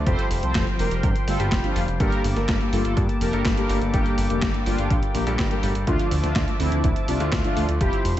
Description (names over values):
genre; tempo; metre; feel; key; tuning
italo disco; 124 BPM; 4/4; straight; G dorian; A4 = 437 Hz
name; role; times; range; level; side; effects
warm analog pad; sustained chords; 0.0-8.2 s; F3 to D6; -30 LUFS; left 3 dB; chorus
clear concert grand piano; stabs; 0.0-8.2 s; G2 to A4; -30 LUFS; left 1 dB; none
fat analog bass; bass; 0.0-8.2 s; D1 to G2; -25 LUFS; equal; tube saturation
mellow synth brass; melody; 0.1-8.2 s; Bb3 to C5; -28 LUFS; equal; chorus, ping-pong delay
clean 12-bit digital drum machine; drums; 0.1-8.2 s; handclaps, hi-hat, snare drum; -30 LUFS; equal; overdrive, gated reverb
electronic kick drum; drums; 0.1-7.9 s; none; -25 LUFS; equal; none
room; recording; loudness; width
little or no reverb; nothing above 8.0 kHz; -20 LUFS; side -13 dB against mid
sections
0.0-8.2 A section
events
none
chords
0.1 Fsus2; 2.0 Gmadd9; 5.9 Dmadd9